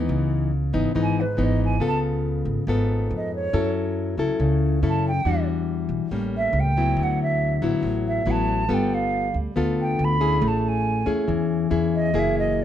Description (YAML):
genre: bossa nova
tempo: 140 BPM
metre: 4/4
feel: straight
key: C# minor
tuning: A4 = 443 Hz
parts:
  - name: nylon-string guitar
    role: accompaniment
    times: 0.0-12.6 s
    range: G#2 to A4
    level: -23 LUFS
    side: left 3 dB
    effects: none
  - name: upright bass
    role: bass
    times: 0.0-12.6 s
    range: F#1 to F#2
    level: -26 LUFS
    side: right 1 dB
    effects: none
  - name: hollow concert flute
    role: melody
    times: 1.0-12.6 s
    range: B4 to B5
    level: -25 LUFS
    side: right 3 dB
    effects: none
room: light reverb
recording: dark, warm production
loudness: -20 LUFS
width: side -10 dB against mid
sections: 0.1-12.6 A section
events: flute solo 0.1-12.6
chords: 0.1 C#m9; 1.8 C#7b13; 3.5 F#m7; 5.3 Em9; 6.1 A7b9; 7.0 D69; 8.7 G9; 10.4 Amaj7; 12.1 F#9